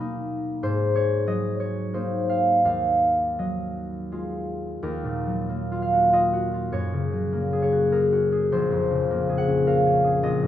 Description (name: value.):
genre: classical, solo harp piece.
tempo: 80-109 BPM.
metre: 3/4.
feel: rubato.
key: Eb minor.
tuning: A4 = 440 Hz.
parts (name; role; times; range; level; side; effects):
concert harp; solo; 0.0-10.5 s; Bb1 to B5; -21 LUFS; equal; none.
room: moderate recital hall reverb, RT60 1.6 s.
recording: minimal, uncompressed stereo recording.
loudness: -21 LUFS.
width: side -11 dB against mid.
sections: 0.0-4.8 A section; 4.8-10.5 B section.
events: none.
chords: 0.0 Bmaj7; 0.6 Ab9; 2.7 Ebmadd9; 6.7 Gbadd9; 8.5 Bbm9.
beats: 0.01 | 0.65 1.28 1.95 | 2.66 3.40 4.13 | 4.84 5.49 6.14 | 6.74 7.33 7.92 | 8.52 9.11 9.69 | 10.25.